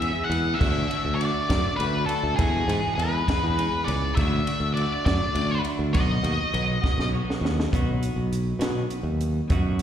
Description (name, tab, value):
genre	indie rock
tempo	68 BPM (dotted quarters)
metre	6/8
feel	straight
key	unclear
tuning	A4 = 437 Hz
part	octave-fuzz lead guitar	melody	0.0-7.1 s	G#4 to F#5	-27 LUFS	left 1 dB	distortion, slapback echo, tape echo
part	crunchy overdriven guitar	riff	0.0-9.8 s	E2 to G#4	-30 LUFS	right 1 dB	spring reverb, slapback echo
part	modern bright fingered electric bass	bass	0.0-9.8 s	B1 to B2	-25 LUFS	equal	none
part	compact cocktail drum kit	drums	0.0-9.8 s	crash cymbal, hi-hat, kick drum, ride cymbal, snare drum	-28 LUFS	equal	none
room	small room ambience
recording	live gig heard through the venue's PA, recital hall reverb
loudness	-22 LUFS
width	side -9 dB against mid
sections	0.0-7.7 A section; 7.7-9.8 B section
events	drum fill 6.8-7.7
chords	0.0 E; 0.6 D; 2.4 E; 4.2 D; 5.9 B